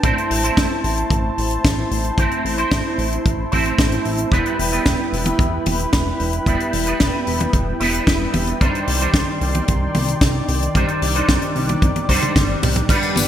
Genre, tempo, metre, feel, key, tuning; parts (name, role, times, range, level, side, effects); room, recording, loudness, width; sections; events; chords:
italo disco; 112 BPM; 4/4; straight; A4 = 440 Hz
warm analog pad; sustained chords; 0.0-13.3 s; Eb3 to D6; -24 LUFS; equal; wide subtle chorus
electric guitar with an envelope filter; stabs; 0.0-13.3 s; G3 to C5; -23 LUFS; right 2 dB; ensemble chorus, digital delay
chorused synth bass; bass; 0.0-13.3 s; E1 to C2; -24 LUFS; equal
kick drum; drums; 0.0-13.0 s; -20 LUFS; equal
tight funk drum kit; drums; 0.0-13.3 s; crash cymbal, hi-hat, snare drum, tambourine, toms; -22 LUFS; left 1 dB; gated reverb
moderate lush hall reverb, RT60 2.3 s; bright 1980s-style digital production; -16 LUFS; side -10 dB against mid
0.0-12.9 A section
drum fill 11.8-12.9
0.0 Am; 4.3 Em; 8.6 Cmadd9